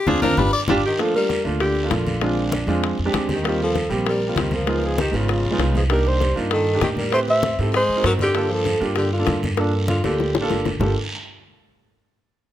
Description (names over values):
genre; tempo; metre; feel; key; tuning
Afro-Cuban jazz; 196 BPM; 4/4; straight; G minor; A4 = 440 Hz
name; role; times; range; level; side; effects
clear tenor saxophone; second line; 0.0-10.9 s; Bb2 to D5; -27 LUFS; left 4 dB; none
warm grand piano; accompaniment; 0.1-10.9 s; G3 to B4; -24 LUFS; right 2 dB; none
upright bass; bass; 0.1-10.9 s; G1 to A2; -24 LUFS; equal; none
bongos; percussion; 0.1-10.9 s; none; -28 LUFS; left 7 dB; none
congas; percussion; 0.1-10.9 s; none; -29 LUFS; left 2 dB; none
guiro; percussion; 0.1-10.9 s; none; -33 LUFS; right 2 dB; none
dark alto saxophone; melody; 0.9-11.0 s; D4 to E5; -23 LUFS; right 1 dB; none
room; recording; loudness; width
light reverb; close, detailed microphones; -18 LUFS; side -12 dB against mid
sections
1.0-10.8 A section; 10.8-12.0 B section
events
band accent 0.0-1.0; drum fill 0.4-1.0, 9.6-10.8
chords
0.4 G5; 1.0 Gm9; 2.2 Bb7; 3.5 Eb69; 4.7 C#9; 5.9 Cm9; 7.1 Am7; 7.7 Ab9; 8.4 Gm9